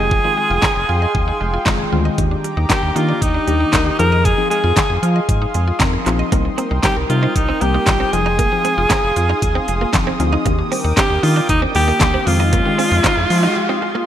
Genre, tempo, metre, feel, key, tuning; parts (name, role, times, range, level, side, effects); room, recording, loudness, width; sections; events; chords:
dance-pop; 116 BPM; 4/4; straight; F dorian; A4 = 440 Hz
bright alto saxophone; melody; 0.0-14.1 s; Eb4 to Bb4; -19 LUFS; equal; ping-pong delay
soft round pluck; accompaniment; 0.0-13.3 s; Eb3 to Bb4; -23 LUFS; left 4 dB; chorus, sidechain pumping
warm analog pad; sustained chords; 0.0-14.1 s; Ab3 to Eb6; -26 LUFS; right 1 dB; chorus, sidechain pumping
mallet-like synth pluck; arpeggios; 0.0-14.1 s; Eb3 to Eb5; -28 LUFS; right 2 dB; chorus, sidechain pumping, ping-pong delay
round analog bass; bass; 0.0-13.5 s; F1 to F3; -19 LUFS; equal; sidechain pumping
pop drum kit; drums; 0.1-13.4 s; handclaps, hi-hat, kick drum, snare drum; -19 LUFS; equal
direct-recorded clean electric guitar; riff; 6.3-14.0 s; Bb3 to Eb4; -26 LUFS; right 5 dB; ensemble chorus
riser; sound effects; 11.7-13.6 s; -26 LUFS; left 2 dB
moderate lush hall reverb, RT60 2.0 s; bright 1980s-style digital production; -14 LUFS; side -10 dB against mid
0.0-14.1 A section
riser 11.7-14.1; break 13.6-14.1
0.0 Fm7; 2.2 Ebmaj7; 4.0 Fm7; 6.3 Cm7; 8.1 Fm7; 10.5 Ebmaj7; 12.3 Fm7